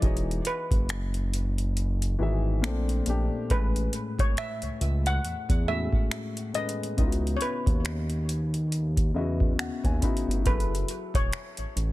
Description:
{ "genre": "contemporary R&B", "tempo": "69 BPM", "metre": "4/4", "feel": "swing 58% on 16ths", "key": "C# minor", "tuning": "A4 = 440 Hz", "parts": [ { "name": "steel pan", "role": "melody", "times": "0.0-11.9 s", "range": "B4 to F#5", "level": "-33 LUFS", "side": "equal", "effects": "digital delay" }, { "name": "dark grand piano", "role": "accompaniment", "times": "0.0-11.9 s", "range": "A2 to B5", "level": "-33 LUFS", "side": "left 3 dB", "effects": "none" }, { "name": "smooth synth bass", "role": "bass", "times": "0.0-11.9 s", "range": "E1 to E2", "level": "-28 LUFS", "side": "equal", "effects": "none" }, { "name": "booming analog drum machine", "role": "drums", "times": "0.0-11.9 s", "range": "finger snaps, hi-hat, kick drum", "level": "-26 LUFS", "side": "equal", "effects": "soft clipping on snare" } ], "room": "small room ambience", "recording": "dense, heavily limited modern master", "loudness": "-25 LUFS", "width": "side -17 dB against mid", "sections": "0.0-11.9 A section", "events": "kick muted 1.8-3.5; grand piano fill 8.7-10.5", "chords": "0.0 Emaj13; 2.6 A#maj9; 3.5 Amaj9; 7.0 C#m11; 10.5 F#m9", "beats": "| 0.02 0.89 1.76 2.63 | 3.50 4.37 5.24 6.11 | 6.98 7.85 8.72 9.59 | 10.46 11.33" }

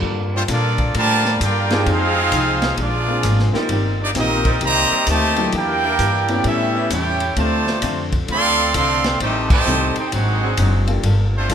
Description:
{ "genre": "jazz, big band swing", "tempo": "131 BPM", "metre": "4/4", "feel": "swing 65% on 8ths", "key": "G minor", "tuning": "A4 = 442 Hz", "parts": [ { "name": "archtop guitar, miked and amplified", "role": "accompaniment", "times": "0.0-11.5 s", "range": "Ab2 to A4", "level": "-28 LUFS", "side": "left 6 dB", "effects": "none" }, { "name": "warm upright piano", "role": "accompaniment", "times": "0.0-11.5 s", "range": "F#3 to A4", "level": "-26 LUFS", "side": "left 2 dB", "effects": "none" }, { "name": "upright bass", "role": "bass", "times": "0.0-11.5 s", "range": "Gb1 to Bb2", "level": "-21 LUFS", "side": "equal", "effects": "none" }, { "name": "vintage drum kit", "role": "drums", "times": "0.0-11.5 s", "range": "crash cymbal, hi-hat, kick drum, ride cymbal, snare drum", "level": "-25 LUFS", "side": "equal", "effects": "none" }, { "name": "bright trombone section", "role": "second line", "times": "0.3-11.5 s", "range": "Bb2 to G4", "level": "-25 LUFS", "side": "right 4 dB", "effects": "none" }, { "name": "bright trumpet section", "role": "melody", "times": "0.4-11.5 s", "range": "A3 to C6", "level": "-19 LUFS", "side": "right 1 dB", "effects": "none" }, { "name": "mellow saxophone section", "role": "sustained chords", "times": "1.7-10.5 s", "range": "F3 to B4", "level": "-29 LUFS", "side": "right 1 dB", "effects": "none" } ], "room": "moderate recital hall reverb, RT60 1.6 s", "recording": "minimal, uncompressed stereo recording", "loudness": "-15 LUFS", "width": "side -8 dB against mid", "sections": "0.0-11.5 A section", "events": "band accent 9.4", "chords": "0.0 Gm9; 1.9 Fm7; 2.8 Bb7; 3.7 Eb6; 5.5 Em7b5; 6.5 A7; 7.4 Dm7; 9.2 Am7b5; 10.1 Ab7#11; 11.0 Gm9", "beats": "| 0.03 0.49 0.94 1.40 | 1.86 2.32 2.78 3.24 | 3.70 4.16 4.62 5.07 | 5.53 5.99 6.45 6.91 | 7.37 7.83 8.29 8.75 | 9.21 9.66 10.12 10.58 | 11.04 11.50" }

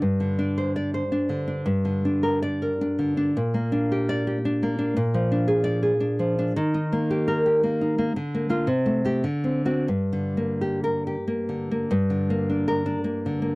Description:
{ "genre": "romantic piece for solo classical guitar", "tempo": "85-118 BPM", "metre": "3/4", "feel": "rubato", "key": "G minor", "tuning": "A4 = 436 Hz", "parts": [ { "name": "nylon-string guitar", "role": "solo", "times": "0.0-13.6 s", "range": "G2 to D5", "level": "-22 LUFS", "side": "equal", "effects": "none" } ], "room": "light reverb", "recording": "dry, close 1970s-style studio recording", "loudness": "-22 LUFS", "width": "side -25 dB against mid", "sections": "0.0-11.9 A section; 11.9-13.6 A section", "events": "none", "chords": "0.0 Gsus4; 1.7 Gm; 3.4 Gm/Bb; 5.0 Bb7; 6.6 Eb; 8.2 Bb/D; 8.7 Am7/C; 9.2 D7; 9.9 Gm", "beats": "| 0.01 0.57 1.11 | 1.67 2.23 2.79 | 3.35 3.90 4.44 | 4.96 5.47 6.01 | 6.56 7.10 7.62 | 8.15 8.68 9.24 | 9.89 10.60 11.27 | 11.90 12.48 13.05" }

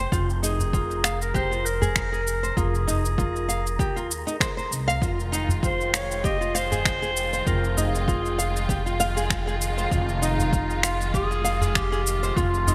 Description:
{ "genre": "organic downtempo", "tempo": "98 BPM", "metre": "4/4", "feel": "swing 55% on 16ths", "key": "F minor", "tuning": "A4 = 440 Hz", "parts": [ { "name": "nylon-string guitar", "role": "arpeggios", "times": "0.0-12.7 s", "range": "Eb4 to F5", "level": "-32 LUFS", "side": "equal", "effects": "low-pass filter, digital delay" }, { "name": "upright bass", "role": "bass", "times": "0.0-12.7 s", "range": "F1 to Eb2", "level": "-30 LUFS", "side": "equal", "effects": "none" }, { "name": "wind-like tuned noise texture", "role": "texture", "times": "0.0-12.7 s", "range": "Bb4 to G5", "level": "-41 LUFS", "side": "equal", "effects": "built-in reverb" }, { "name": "electronic kick drum", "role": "drums", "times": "0.1-12.5 s", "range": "none", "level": "-30 LUFS", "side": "equal", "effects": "overdrive" }, { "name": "electronic shaker and finger snaps", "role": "drums", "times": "0.1-12.7 s", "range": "none", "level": "-30 LUFS", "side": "equal", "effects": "overdrive" }, { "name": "warm clarinet", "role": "melody", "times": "0.4-12.7 s", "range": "Eb4 to Eb5", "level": "-31 LUFS", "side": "equal", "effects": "digital delay" }, { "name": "udu", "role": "percussion", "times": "0.6-12.7 s", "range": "none", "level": "-29 LUFS", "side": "equal", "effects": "none" }, { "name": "rich symphonic string section", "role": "sustained chords", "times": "5.0-12.7 s", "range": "Eb3 to F4", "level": "-34 LUFS", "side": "equal", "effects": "sidechain pumping" } ], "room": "moderate plate reverb, RT60 2.9 s", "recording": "bright 1980s-style digital production", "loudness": "-24 LUFS", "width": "mono", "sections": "0.0-12.7 A section", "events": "none", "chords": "0.0 Fm7", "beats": "| 0.12 0.73 1.34 1.96 | 2.57 3.18 3.79 4.41 | 5.02 5.63 6.24 6.85 | 7.47 8.08 8.69 9.30 | 9.91 10.53 11.14 11.75 | 12.36" }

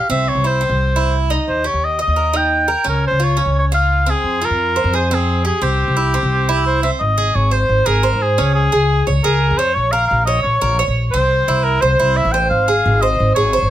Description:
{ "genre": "latin, Cuban son and guajira", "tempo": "174 BPM", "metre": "4/4", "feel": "straight", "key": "unclear", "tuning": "A4 = 440 Hz", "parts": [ { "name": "warm oboe", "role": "melody", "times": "0.0-13.7 s", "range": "G4 to G5", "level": "-17 LUFS", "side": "equal", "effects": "none" }, { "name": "Cuban tres", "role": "arpeggios", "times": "0.0-13.7 s", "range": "C4 to Eb5", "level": "-20 LUFS", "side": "right 3 dB", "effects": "none" }, { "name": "upright bass", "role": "bass", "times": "0.1-13.7 s", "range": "G1 to Ab2", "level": "-18 LUFS", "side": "equal", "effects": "none" } ], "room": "light reverb", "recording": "none", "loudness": "-14 LUFS", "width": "side -12 dB against mid", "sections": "0.0-7.0 A section; 7.0-13.7 B section", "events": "none", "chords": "0.1 C; 1.5 Eb; 2.9 Dbmaj7; 4.2 Fm; 5.6 C; 7.0 Ab; 8.4 Db5; 9.8 Bbm; 11.1 C; 12.5 Ab", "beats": "| 0.10 0.44 0.79 1.14 | 1.48 1.83 2.17 2.52 | 2.86 3.21 3.55 3.90 | 4.24 4.59 4.93 5.28 | 5.62 5.97 6.31 6.66 | 7.00 7.35 7.69 8.04 | 8.38 8.72 9.07 9.41 | 9.76 10.10 10.45 10.79 | 11.13 11.48 11.82 12.16 | 12.51 12.85 13.20 13.54" }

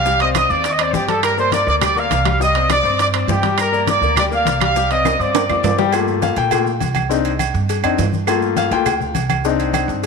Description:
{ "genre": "latin, salsa", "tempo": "204 BPM", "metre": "4/4", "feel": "straight", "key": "G minor", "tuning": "A4 = 440 Hz", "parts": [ { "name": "clear trumpet section", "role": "melody", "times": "0.0-5.8 s", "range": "G4 to Eb6", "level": "-17 LUFS", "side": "right 1 dB", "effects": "none" }, { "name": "bright concert grand piano", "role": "accompaniment", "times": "0.0-10.1 s", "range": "G3 to G5", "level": "-21 LUFS", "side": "left 10 dB", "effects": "none" }, { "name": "upright bass", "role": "bass", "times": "0.0-10.1 s", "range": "C2 to Bb2", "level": "-22 LUFS", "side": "right 2 dB", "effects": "none" }, { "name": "bongos and cowbell", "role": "percussion", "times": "0.1-10.1 s", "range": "none", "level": "-29 LUFS", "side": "left 11 dB", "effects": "none" }, { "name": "congas", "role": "percussion", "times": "0.1-10.1 s", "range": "none", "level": "-28 LUFS", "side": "left 10 dB", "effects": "none" }, { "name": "maracas", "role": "percussion", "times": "0.1-10.1 s", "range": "none", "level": "-34 LUFS", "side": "right 16 dB", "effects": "none" }, { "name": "timbales and agogo bells", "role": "percussion", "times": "0.2-10.1 s", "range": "none", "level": "-23 LUFS", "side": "right 15 dB", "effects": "none" }, { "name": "claves", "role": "percussion", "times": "0.3-9.9 s", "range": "none", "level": "-29 LUFS", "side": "right 15 dB", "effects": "none" } ], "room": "moderate plate reverb, RT60 2.5 s", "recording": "1960s-style stereo with parts hard left and right", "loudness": "-14 LUFS", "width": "side -4 dB against mid", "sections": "0.0-5.9 A section; 5.9-10.1 B section", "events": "drum fill 5.0-5.9; grand piano solo 5.9-10.1", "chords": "0.1 Cmadd9; 1.2 Gm7; 2.4 Cmadd9; 3.6 Gm7; 4.8 Cmadd9; 5.9 Gm7; 7.1 Cmadd9; 8.3 Gm7; 9.4 Cmadd9", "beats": "| 0.06 0.35 0.65 0.94 | 1.23 1.53 1.82 2.11 | 2.41 2.70 2.99 3.29 | 3.58 3.88 4.17 4.46 | 4.76 5.05 5.34 5.64 | 5.93 6.22 6.52 6.81 | 7.10 7.40 7.69 7.98 | 8.28 8.57 8.86 9.16 | 9.45 9.74 10.04" }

